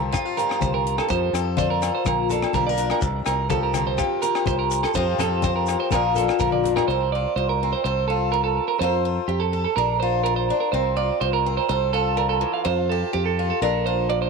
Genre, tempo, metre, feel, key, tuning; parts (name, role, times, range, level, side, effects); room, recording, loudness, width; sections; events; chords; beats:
highlife guitar band; 125 BPM; 4/4; straight; A4 = 445 Hz
picked swing-style acoustic guitar; accompaniment; 0.0-14.3 s; G2 to D5; -26 LUFS; left 16 dB
fingered electric bass; bass; 0.0-14.3 s; Bb1 to F2; -26 LUFS; left 1 dB
clean electric guitar; arpeggios; 0.1-14.3 s; F4 to F5; -23 LUFS; right 12 dB; tape echo
tight funk drum kit; drums; 0.1-6.9 s; hi-hat, kick drum, rim click; -32 LUFS; left 1 dB
agogo bells; percussion; 0.1-6.9 s; -32 LUFS; left 13 dB
congas; percussion; 0.1-6.9 s; -32 LUFS; left 11 dB
shekere; percussion; 0.1-6.5 s; -33 LUFS; left 6 dB
light reverb, small room ambience; 1960s-style stereo with parts hard left and right; -20 LUFS; side -4 dB against mid
0.0-6.9 A section; 6.9-14.3 B section
drum fill 6.4-6.9
0.0 Csus4; 1.1 Fadd9; 2.1 Bb; 3.0 Csus4; 5.0 Fadd9; 5.9 Bb; 6.9 Csus4; 8.8 Fadd9; 9.8 Bb; 10.7 Csus4; 12.7 Fadd9; 13.6 Bb
0.13 0.61 | 1.10 1.58 2.06 2.54 | 3.03 3.51 3.99 4.47 | 4.96 5.44 5.92 6.40 | 6.88 7.36 7.85 8.33 | 8.81 9.29 9.77 10.25 | 10.73 11.21 11.69 12.17 | 12.65 13.14 13.62 14.10